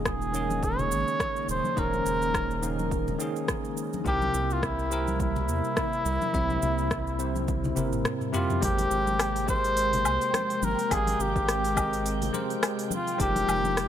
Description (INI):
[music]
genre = sunset chillout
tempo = 105 BPM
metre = 4/4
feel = swing 56% on 16ths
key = Ab major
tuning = A4 = 440 Hz
[part]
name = bell-like tine electric piano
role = accompaniment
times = 0.0-13.9 s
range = C3 to F5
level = -32 LUFS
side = equal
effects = auto-pan, tape echo
[part]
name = airy breathy pad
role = sustained chords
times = 0.0-13.9 s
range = C3 to G5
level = -35 LUFS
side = right 2 dB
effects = chorus, phaser
[part]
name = round analog bass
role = bass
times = 0.0-13.9 s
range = Eb1 to E2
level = -32 LUFS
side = equal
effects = none
[part]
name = trumpet with cup mute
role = melody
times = 0.1-13.9 s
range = E4 to Db5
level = -28 LUFS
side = equal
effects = digital delay
[part]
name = deep house drum kit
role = drums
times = 0.1-13.9 s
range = hi-hat, rim click, shaker, toms, woodblock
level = -32 LUFS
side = equal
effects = none
[part]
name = electronic kick drum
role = drums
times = 0.1-13.3 s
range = none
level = -32 LUFS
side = equal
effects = none
[part]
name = congas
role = percussion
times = 0.5-13.7 s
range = none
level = -38 LUFS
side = left 2 dB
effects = none
[sound]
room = light reverb, digital ambience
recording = none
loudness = -24 LUFS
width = side -10 dB against mid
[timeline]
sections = 0.0-8.6 A section; 8.6-13.9 B section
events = drum fill 7.5-8.6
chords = 0.0 Eb7sus4; 4.1 C7; 8.6 Abmaj9; 12.9 Fm11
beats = 0.06 0.63 1.20 | 1.77 2.34 2.91 3.48 | 4.05 4.63 5.20 5.77 | 6.34 6.91 7.48 8.05 | 8.63 9.20 9.77 10.34 | 10.91 11.48 12.05 12.63 | 13.20 13.77